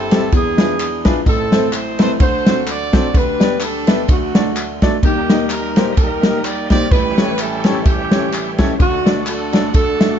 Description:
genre	uptempo gospel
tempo	127 BPM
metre	4/4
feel	swing 56% on 8ths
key	unclear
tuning	A4 = 440 Hz
part	warm horn section	melody	0.0-10.2 s	A3 to D5	-20 LUFS	right 2 dB	none
part	clear grand piano	accompaniment	0.0-10.2 s	G1 to E5	-20 LUFS	left 2 dB	none
part	natural country drum kit	drums	0.1-10.1 s	kick drum, ride cymbal, snare drum	-15 LUFS	equal	none
part	tambourine and handclaps	percussion	0.1-10.1 s	none	-31 LUFS	left 4 dB	none
part	bright tonewheel organ	sustained chords	5.0-10.2 s	E3 to G4	-26 LUFS	right 3 dB	slow rotary speaker, chorus vibrato
room	light reverb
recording	dark, warm production, nothing above 7.6 kHz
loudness	-13 LUFS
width	side -8 dB against mid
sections	0.0-10.2 A section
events	none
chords	0.3 E7b9; 1.3 Am; 2.2 D7; 3.1 G/D; 4.1 D; 5.0 Eb; 6.9 A7; 8.8 D

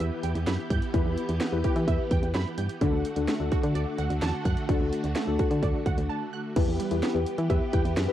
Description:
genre	synth-pop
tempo	128 BPM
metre	4/4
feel	straight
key	E minor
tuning	A4 = 440 Hz
part	muted felt-like synth keys	accompaniment	0.0-8.1 s	D4 to B4	-31 LUFS	left 7 dB	chorus, cassette tape
part	string machine, violins	sustained chords	0.0-8.1 s	D3 to G4	-34 LUFS	right 1 dB	ensemble chorus, cassette tape
part	analog pluck	arpeggios	0.0-8.0 s	D3 to G6	-36 LUFS	right 8 dB	chorus, cassette tape, tape echo
part	solid FM bass	bass	0.0-8.1 s	D2 to E3	-28 LUFS	right 1 dB	transformer saturation
part	house drum kit	drums	0.0-8.1 s	crash cymbal, hi-hat, kick drum, snare drum	-28 LUFS	right 1 dB	cassette tape
room	moderate small room reverb, RT60 0.5 s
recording	home recording on cassette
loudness	-24 LUFS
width	side -12 dB against mid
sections	0.0-6.6 A section; 6.6-8.1 B section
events	break 6.1-6.6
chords	0.0 Em; 2.8 D; 6.6 Em

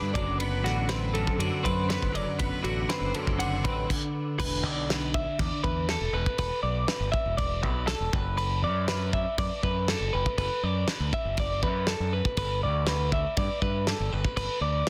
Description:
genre	math rock and midwest emo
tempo	120 BPM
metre	4/4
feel	straight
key	E minor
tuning	A4 = 440 Hz
part	twelve-string electric guitar	accompaniment	0.0-5.9 s	F#2 to D4	-34 LUFS	equal	ensemble chorus
part	twelve-string electric guitar	arpeggios	0.0-14.9 s	F#4 to E5	-33 LUFS	equal	spring reverb, analog delay, plate reverb
part	growling fingered electric bass	bass	0.0-14.8 s	E1 to G2	-32 LUFS	equal	overdrive
part	loose indie drum kit	drums	0.2-14.9 s	crash cymbal, kick drum, ride cymbal, snare drum	-33 LUFS	equal	none
room	light reverb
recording	dense, heavily limited modern master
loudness	-28 LUFS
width	mono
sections	0.0-4.4 A section; 4.4-14.9 B section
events	none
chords	0.1 D6/F#; 4.4 E7(no3); 8.1 Bm/F#; 12.4 G

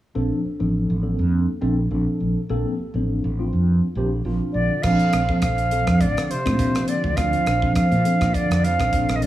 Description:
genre	electric jazz fusion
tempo	103 BPM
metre	4/4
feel	swing 55% on 16ths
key	Bb major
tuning	A4 = 440 Hz
part	tine electric piano	accompaniment	0.1-9.3 s	F3 to C5	-25 LUFS	equal	medium stereo tremolo, phaser
part	mellow fretless electric bass	bass	0.2-9.3 s	A1 to Bb2	-22 LUFS	right 1 dB	lush chorus
part	bright concert flute	melody	4.5-9.3 s	C5 to F5	-23 LUFS	right 1 dB	none
part	mellow bass clarinet	second line	4.5-9.3 s	C3 to F3	-25 LUFS	right 1 dB	none
part	crisp fusion drum kit	drums	4.8-9.3 s	crash cymbal, hi-hat, kick drum, rim click	-27 LUFS	equal	none
room	light reverb, small room ambience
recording	none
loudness	-18 LUFS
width	side -14 dB against mid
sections	0.2-4.8 A section; 4.8-9.3 B section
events	none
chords	0.2 Bbmaj9

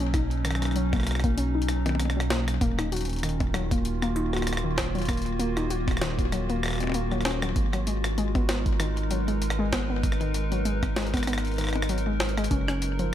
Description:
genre	IDM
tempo	97 BPM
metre	4/4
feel	swing 56% on 16ths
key	unclear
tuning	A4 = 440 Hz
part	warbly tape-like pad	sustained chords	0.0-13.1 s	B2 to B4	-32 LUFS	left 1 dB	chorus, built-in reverb, vintage 12-bit sampler grit
part	warbly dusty pluck	arpeggios	0.0-13.1 s	D#3 to F#4	-31 LUFS	left 2 dB	chorus, tape echo
part	rubbery square bass	bass	0.0-13.1 s	D#1 to B1	-29 LUFS	right 1 dB	tube saturation
part	jungle sampler-style drum kit	drums	0.0-13.1 s	hi-hat, rim click, snare drum, toms	-32 LUFS	left 1 dB	ping-pong delay
part	electronic kick drum	drums	0.1-12.6 s	none	-27 LUFS	right 1 dB	none
room	digital ambience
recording	none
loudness	-24 LUFS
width	side -11 dB against mid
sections	0.0-13.1 A section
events	none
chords	0.0 Badd9; 2.6 D#m7; 7.6 G#m9; 12.5 F#maj9

